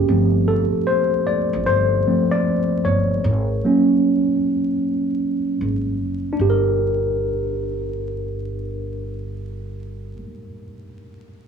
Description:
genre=hip hop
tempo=76 BPM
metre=4/4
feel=swing 65% on 16ths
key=G minor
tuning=A4 = 440 Hz
part: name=tine electric piano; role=accompaniment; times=0.0-11.5 s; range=F3 to D5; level=-19 LUFS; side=equal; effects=overdrive, fast stereo tremolo, cassette tape, low-pass filter
part: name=upright bass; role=bass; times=0.0-10.2 s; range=Gb1 to A1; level=-23 LUFS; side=equal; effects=none
room=light reverb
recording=home recording on cassette, vinyl crackle, small room ambience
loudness=-18 LUFS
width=side -7 dB against mid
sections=0.0-6.4 A section; 6.4-9.6 B section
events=tine electric piano solo 0.0-6.4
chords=0.1 G9sus4; 3.2 Ab9sus4; 6.4 Gm

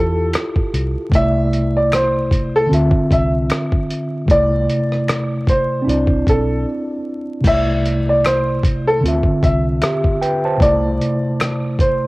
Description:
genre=lo-fi hip hop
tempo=76 BPM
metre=4/4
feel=swing 57% on 16ths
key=C major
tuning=A4 = 441 Hz
part: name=warm upright piano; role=melody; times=0.0-12.1 s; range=A4 to E5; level=-19 LUFS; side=equal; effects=cassette tape
part: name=mellow tine electric piano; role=accompaniment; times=0.0-12.1 s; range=C3 to A5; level=-19 LUFS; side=equal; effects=medium stereo tremolo, cassette tape
part: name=vintage muted fingered electric bass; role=bass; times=0.0-11.0 s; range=B1 to E2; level=-21 LUFS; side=equal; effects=none
part: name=dusty soul sampler-style drum kit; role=drums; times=0.3-12.0 s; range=crash cymbal, hi-hat, kick drum, rim click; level=-19 LUFS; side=equal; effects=cassette tape
part: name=finger snaps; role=percussion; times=0.3-11.6 s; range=none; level=-31 LUFS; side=left 2 dB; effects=none
room=light reverb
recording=home recording on cassette, vinyl crackle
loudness=-14 LUFS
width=side -21 dB against mid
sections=0.0-7.4 A section; 7.4-12.1 B section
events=break 6.7-7.4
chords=0.0 Fmaj9; 1.1 C69; 2.7 Dm9; 4.3 C69; 5.9 Cmaj9; 7.4 C69; 9.0 Dm9; 10.6 C69

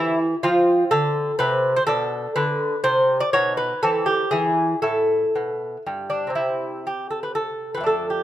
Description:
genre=classical, baroque-style dance for lute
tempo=114-128 BPM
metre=3/4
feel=rubato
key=A minor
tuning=A4 = 440 Hz
part: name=lute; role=solo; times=0.0-8.2 s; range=F2 to D5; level=-19 LUFS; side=equal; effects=none
room=light reverb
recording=close, detailed microphones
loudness=-19 LUFS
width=side -12 dB against mid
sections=0.0-6.4 A section; 6.4-8.2 A section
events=none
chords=0.4 F; 1.9 Bm7; 3.3 B; 3.8 Am/E; 4.3 N.C.; 4.8 A5; 6.4 N.C.

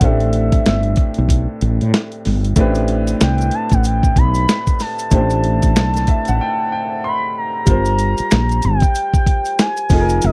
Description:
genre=R&B, neo-soul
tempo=94 BPM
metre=4/4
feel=swing 61% on 16ths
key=A minor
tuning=A4 = 445 Hz
part: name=gliding portamento lead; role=melody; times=0.0-10.3 s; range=Eb5 to B5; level=-24 LUFS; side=equal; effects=chorus
part: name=clear upright piano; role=accompaniment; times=0.0-10.3 s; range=A2 to C6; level=-24 LUFS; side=equal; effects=none
part: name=woody fretless electric bass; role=bass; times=0.0-10.3 s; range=F1 to A2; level=-19 LUFS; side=equal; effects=none
part: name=dusty soul sampler-style drum kit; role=drums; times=0.0-10.3 s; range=hi-hat, kick drum, snare drum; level=-18 LUFS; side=equal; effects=none
part: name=maracas and finger snaps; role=percussion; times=2.6-10.3 s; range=none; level=-32 LUFS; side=equal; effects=none
room=little or no reverb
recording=dry, close 1970s-style studio recording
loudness=-16 LUFS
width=mono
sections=0.0-7.7 A section; 7.7-10.3 B section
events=upright piano fill 5.8-7.7; break 6.4-7.7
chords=0.0 Am11; 7.7 Gm7

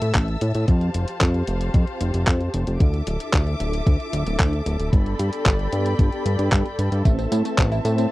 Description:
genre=italo disco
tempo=113 BPM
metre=4/4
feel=straight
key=unclear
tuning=A4 = 442 Hz
part: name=rich studio string section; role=sustained chords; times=0.0-8.1 s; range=C4 to E6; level=-30 LUFS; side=left 1 dB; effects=none
part: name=mellow synth brass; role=stabs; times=0.0-8.1 s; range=B3 to C5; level=-33 LUFS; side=left 2 dB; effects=chorus, tape echo
part: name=fat analog bass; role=bass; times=0.0-8.1 s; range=D1 to A2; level=-22 LUFS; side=equal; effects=none
part: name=clean 12-bit digital drum machine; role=drums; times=0.0-8.1 s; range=handclaps, hi-hat, tambourine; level=-25 LUFS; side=equal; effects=none
part: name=electronic kick drum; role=drums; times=0.1-7.7 s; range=none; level=-19 LUFS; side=equal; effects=none
part: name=analog pluck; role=arpeggios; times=7.1-8.1 s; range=A3 to E4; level=-26 LUFS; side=right 1 dB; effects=chorus, phaser, tape echo
room=little or no reverb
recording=dry, close 1970s-style studio recording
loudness=-19 LUFS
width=side -18 dB against mid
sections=0.0-8.1 A section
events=none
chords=0.0 Am; 0.7 Fsus2; 2.8 Dmadd9; 4.9 Gadd9; 7.1 Am

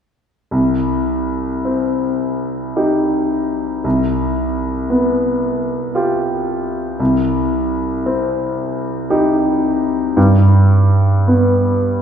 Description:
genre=classical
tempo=56 BPM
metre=3/4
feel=uneven beats, rubato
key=C minor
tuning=A4 = 439 Hz
part: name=clear concert grand piano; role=accompaniment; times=0.5-12.0 s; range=C2 to G4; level=-14 LUFS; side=equal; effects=none
room=wet concert hall reverb, RT60 2.0 s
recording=recorded in a church or concert hall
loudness=-14 LUFS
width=side -8 dB against mid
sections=0.5-12.0 A section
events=none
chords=0.5 Cm; 3.8 G7/C; 7.0 Cm; 10.2 G

